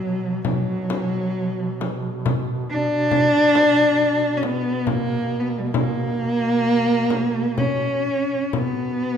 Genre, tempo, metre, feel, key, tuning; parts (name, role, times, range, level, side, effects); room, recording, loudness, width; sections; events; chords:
caucasian folk, Caucasian lament; 67 BPM; 3/4; uneven beats, rubato; B harmonic minor; A4 = 444 Hz
dark cello; melody; 0.0-9.2 s; F#3 to D4; -20 LUFS; equal
warm duduk; drone; 0.0-9.2 s; B2; -30 LUFS; right 2 dB
frame drum; percussion; 0.4-8.8 s; -27 LUFS; left 2 dB
wet recital hall reverb, RT60 1.7 s; recorded in a church or concert hall; -19 LUFS; side -8 dB against mid
0.0-9.2 A section